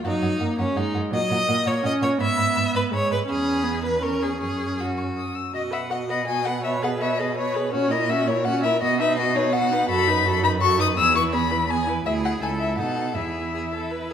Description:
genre	quick classical-period movement for string quartet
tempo	166 BPM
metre	3/4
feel	straight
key	B major, E major from 9.9 s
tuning	A4 = 440 Hz
part	warm violin	melody	0.0-14.1 s	C#5 to E6	-24 LUFS	left 5 dB	none
part	warm viola	accompaniment	0.0-14.1 s	F#3 to B4	-27 LUFS	right 3 dB	none
part	warm cello	bass	0.0-14.1 s	C#2 to B2	-28 LUFS	right 4 dB	none
part	clear violin	second line	0.1-14.1 s	C#4 to F#5	-27 LUFS	equal	none
room	moderate recital hall reverb, RT60 1.7 s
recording	none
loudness	-20 LUFS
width	side -8 dB against mid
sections	0.0-5.5 A section; 5.5-14.1 B section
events	none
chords	0.1 D#m/F#; 1.1 F#/A#; 2.2 E/G#; 3.3 E; 4.0 C#m/E; 4.4 F#5; 5.5 B; 6.6 C#5/B; 7.7 F#7/A#; 8.8 B; 9.9 B7/F#; 11.0 E; 12.1 E7/D; 12.4 A/C#; 12.8 B7; 13.2 E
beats	| 0.05 0.41 0.76 | 1.12 1.48 1.84 | 2.20 2.56 2.92 | 3.28 3.65 4.02 | 4.39 4.78 5.16 | 5.54 5.91 6.28 | 6.64 7.01 7.37 | 7.73 8.09 8.46 | 8.81 9.18 9.54 | 9.90 10.26 10.62 | 10.98 11.34 11.70 | 12.06 12.42 12.79 | 13.16 13.54 13.91

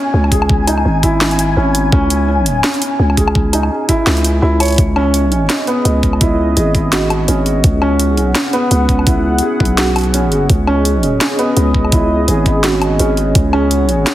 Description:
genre	half-time drum and bass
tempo	168 BPM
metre	4/4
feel	swing 57% on 16ths, half-time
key	unclear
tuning	A4 = 442 Hz
part	felt-muted upright piano	arpeggios	0.0-14.1 s	B3 to C#5	-17 LUFS	right 1 dB	dub echo
part	flickering grainy texture	texture	0.0-4.8 s	G#5	-22 LUFS	left 3 dB	built-in reverb
part	growling 808-style bass	bass	0.1-14.1 s	G#1 to C#2	-15 LUFS	equal	none
part	drum and bass drum kit	drums	0.2-14.1 s	hi-hat, snare drum, woodblock	-18 LUFS	equal	overdrive
part	electronic kick drum	drums	0.3-13.4 s	none	-14 LUFS	equal	overdrive
part	dark analog pad	sustained chords	5.2-14.1 s	C#4 to F#5	-19 LUFS	equal	chorus, sidechain pumping
room	moderate echo chamber reverb, RT60 1.7 s, digital ambience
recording	heavily compressed radio sound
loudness	-11 LUFS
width	side -14 dB against mid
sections	0.0-4.8 A section; 4.8-14.1 A section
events	drop 0.0-4.8, 4.8-14.1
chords	0.0 C#madd9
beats	0.14 | 0.50 0.85 1.21 1.57 | 1.92 2.28 2.64 3.00 | 3.35 3.71 4.07 4.42 | 4.78 5.14 5.50 5.85 | 6.21 6.57 6.92 7.28 | 7.64 8.00 8.35 8.71 | 9.07 9.42 9.78 10.14 | 10.50 10.85 11.21 11.57 | 11.92 12.28 12.64 13.00 | 13.35 13.71 14.07

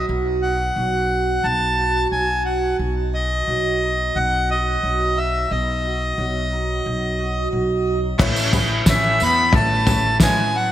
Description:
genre	indie folk with a building arrangement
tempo	89 BPM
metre	4/4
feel	straight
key	unclear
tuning	A4 = 444 Hz
part	accordion	melody	0.0-10.7 s	D#5 to B5	-21 LUFS	equal	digital delay
part	fingerpicked steel-string acoustic guitar	accompaniment	0.0-8.2 s	F#2 to F#4	-25 LUFS	right 3 dB	analog chorus
part	upright bass	bass	0.0-10.7 s	A1 to A2	-24 LUFS	equal	none
part	bright concert grand piano	accompaniment	8.2-10.7 s	A1 to E5	-29 LUFS	left 1 dB	wide subtle chorus
part	picked twelve-string acoustic guitar	accompaniment	8.2-10.7 s	A3 to B4	-28 LUFS	left 7 dB	none
part	cloth-damped thuddy drum kit	drums	8.2-10.4 s	crash cymbal, kick drum, snare drum, toms	-18 LUFS	equal	gated reverb
part	tambourine	percussion	8.2-10.5 s	none	-32 LUFS	right 5 dB	none
part	rich cello	second line	8.9-10.7 s	E3 to B3	-26 LUFS	right 2 dB	none
room	moderate lush hall reverb, RT60 1.9 s, studio reverb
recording	bright 1980s-style digital production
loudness	-17 LUFS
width	side -12 dB against mid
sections	0.0-8.2 A section; 8.2-10.7 B section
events	none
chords	0.0 B; 8.2 Aadd9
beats	| 0.09 0.76 1.44 2.11 | 2.79 3.47 4.14 4.82 | 5.49 6.17 6.84 7.52 | 8.19 8.86 9.54 10.21

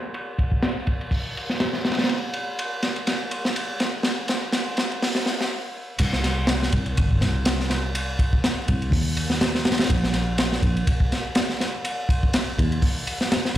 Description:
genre	breakbeat, breaks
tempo	123 BPM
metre	4/4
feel	swing 56% on 16ths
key	C minor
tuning	A4 = 443 Hz
part	crunchy breakbeat drum kit	drums	0.1-13.6 s	crash cymbal, hi-hat, kick drum, ride cymbal, snare drum	-22 LUFS	equal	low-pass filter on kick, low-pass filter on cymbals, low-pass filter on hats, low-pass filter on snare, low-pass filter on room
part	fingered electric bass	bass	6.0-13.6 s	G1 to Eb2	-24 LUFS	equal	none
room	light reverb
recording	played on a big sound system in a bare room, large studio reverb, high-pass filter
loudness	-21 LUFS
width	side -13 dB against mid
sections	0.0-6.0 A section; 6.0-13.6 B section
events	build-up 0.0-6.0; filter sweep on drum 0.0-6.0; filter sweep 0.0-6.0; drum fill 2.1-5.5; stop 5.5-6.0; drop 6.0-13.6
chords	none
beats	| 0.14 0.63 1.12 1.61 | 2.09 2.58 3.07 3.56 | 4.04 4.53 5.02 5.51 | 6.00 6.48 6.97 7.46 | 7.95 8.44 8.92 9.41 | 9.90 10.39 10.87 11.36 | 11.85 12.34 12.82 13.31

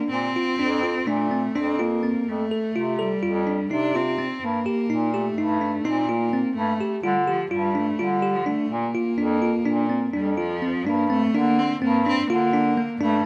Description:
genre	contemporary instrumental, chamber music in an uneven meter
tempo	252 BPM (eighths)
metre	9/8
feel	straight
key	Bb major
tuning	A4 = 440 Hz
part	rich cello	melody	0.0-13.2 s	F3 to D4	-28 LUFS	equal	none
part	bell-like tine electric piano	arpeggios	0.0-13.2 s	Bb3 to A4	-27 LUFS	equal	none
part	bright bass clarinet	bass	0.1-13.3 s	F2 to D3	-29 LUFS	equal	none
room	moderate scoring stage reverb, RT60 1.8 s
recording	none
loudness	-23 LUFS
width	mono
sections	0.0-10.9 A section; 10.9-13.3 B section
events	none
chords	0.1 Bbadd9; 2.3 F; 4.4 Eb/G; 6.6 G5; 8.7 Bbadd9; 10.9 Gm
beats	| 0.12 0.36 0.60 0.83 1.07 1.31 1.55 1.79 2.03 | 2.27 2.51 2.75 2.99 3.23 3.47 3.71 3.95 4.19 | 4.43 4.67 4.91 5.14 5.38 5.62 5.86 6.09 6.33 | 6.57 6.80 7.04 7.27 7.51 7.75 7.99 8.22 8.46 | 8.70 8.94 9.18 9.41 9.65 9.89 10.13 10.38 10.62 | 10.86 11.10 11.34 11.58 11.82 12.06 12.30 12.54 12.77 | 13.01 13.25

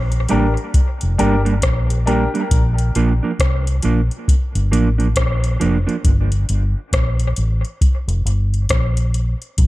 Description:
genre	dub reggae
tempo	68 BPM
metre	4/4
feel	swing 61% on 16ths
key	G minor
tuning	A4 = 440 Hz
part	vintage muted fingered electric bass	bass	0.0-9.7 s	F1 to C2	-17 LUFS	equal	none
part	soft vintage rhythm box	drums	0.1-9.7 s	hi-hat, kick drum, rim click	-18 LUFS	equal	overdrive
part	mellow electric guitar	accompaniment	0.3-6.0 s	F3 to D4	-22 LUFS	right 4 dB	dub echo
part	warm upright piano	stabs	0.3-2.3 s	D4 to Bb4	-24 LUFS	left 3 dB	dub echo
room	light reverb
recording	none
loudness	-15 LUFS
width	side -18 dB against mid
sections	0.0-9.7 A section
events	none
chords	0.0 Gm; 2.5 Bb; 6.0 Gm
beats	0.74 1.63 | 2.51 3.39 4.28 5.16 | 6.05 6.93 7.81 8.70 | 9.58

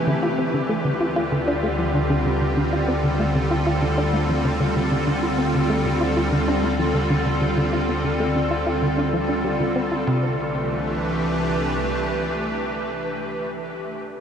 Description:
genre	ambient, sequencer-driven space music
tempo	96 BPM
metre	4/4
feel	straight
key	unclear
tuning	A4 = 440 Hz
part	evolving wavetable pad	sustained chords	0.0-13.3 s	D3 to B4	-22 LUFS	equal	ensemble chorus, built-in reverb, shimmer reverb
part	plucky analog bass	riff	0.0-10.4 s	C3 to F4	-24 LUFS	equal	ping-pong delay, shimmer reverb
part	analog drone	bass	1.1-11.9 s	C2 to D2	-29 LUFS	equal	chorus
room	wet huge ambient reverb, RT60 7.8 s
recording	worn, warbling old tape, cassette tape, warbly pitch drift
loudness	-20 LUFS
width	side -8 dB against mid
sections	0.0-10.1 A section; 10.1-12.6 B section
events	none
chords	0.1 Dm; 10.1 C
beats	| 0.07 0.69 1.32 1.95 | 2.57 3.19 3.82 4.45 | 5.07 5.70 6.32 6.95 | 7.57 8.20 8.82 9.45 | 10.07 10.70 11.32 11.95

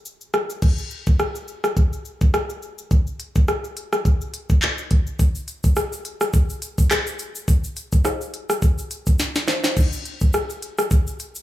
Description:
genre	dancehall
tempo	105 BPM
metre	4/4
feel	swing 56% on 16ths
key	none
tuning	none
part	afro-pop drum kit	drums	0.1-11.4 s	crash cymbal, handclaps, hi-hat, kick drum, rim click, shaker, snare drum	-19 LUFS	equal	none
part	tube shaker and timbales	percussion	5.2-11.4 s	none	-31 LUFS	right 2 dB	none
room	light reverb, digital ambience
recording	small room ambience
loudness	-19 LUFS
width	side -14 dB against mid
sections	0.6-9.8 A section; 9.8-11.4 B section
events	break 0.0-0.6; drum fill 9.2-9.8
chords	none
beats	0.05 | 0.62 1.20 1.77 2.34 | 2.91 3.48 4.05 4.62 | 5.20 5.77 6.34 6.91 | 7.48 8.05 8.62 9.20 | 9.77 10.34 10.91

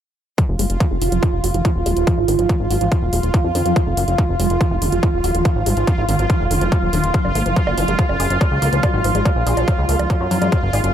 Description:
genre	psychedelic trance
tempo	142 BPM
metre	4/4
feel	straight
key	unclear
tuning	A4 = 440 Hz
part	bubbling stepped-filter texture	sustained chords	0.5-10.9 s	F4	-21 LUFS	right 2 dB	chorus, built-in reverb, vintage 12-bit sampler grit, sidechain pumping
part	woody wave-folded pluck	riff	0.4-10.9 s	Eb3 to Ab4	-24 LUFS	moving between left 6 dB and right 4 dB	chorus, auto-pan, sidechain pumping, analog delay
part	electronic hi-hat and bongos	drums	0.4-10.9 s	none	-28 LUFS	right 2 dB	overdrive
part	electronic kick drum	drums	0.4-10.6 s	none	-18 LUFS	equal	distortion, overdrive
part	fat analog bass	bass	0.5-10.9 s	Eb1 to Gb2	-20 LUFS	equal	none
room	moderate cathedral reverb, RT60 4.4 s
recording	dreamy mix soaked in reverb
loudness	-15 LUFS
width	side -10 dB against mid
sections	0.4-10.9 A section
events	filter sweep on synth arpeggio sound 0.4-10.9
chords	0.4 Ebmadd9; 7.1 Gb5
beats	| 0.38 0.80 1.23 1.65 | 2.07 2.49 2.92 3.34 | 3.76 4.18 4.61 5.03 | 5.45 5.88 6.30 6.72 | 7.14 7.57 7.99 8.41 | 8.83 9.26 9.68 10.10 | 10.52

